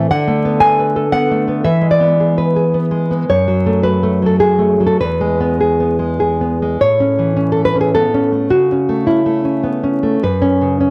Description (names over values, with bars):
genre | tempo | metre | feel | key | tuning
romantic piece for solo classical guitar | 97-119 BPM | 3/4 | rubato | A major | A4 = 441 Hz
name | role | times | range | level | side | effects
nylon-string guitar | solo | 0.0-10.9 s | E2 to G#5 | -15 LUFS | equal | cassette tape
room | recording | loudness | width
light reverb, studio reverb | home recording on cassette, vinyl crackle | -15 LUFS | mono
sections
0.0-6.8 A section; 6.8-10.9 B section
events
none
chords
0.1 Bm7/D; 1.7 E7; 3.3 F#m; 5.0 E; 6.8 A; 8.5 A/C#; 10.2 F#5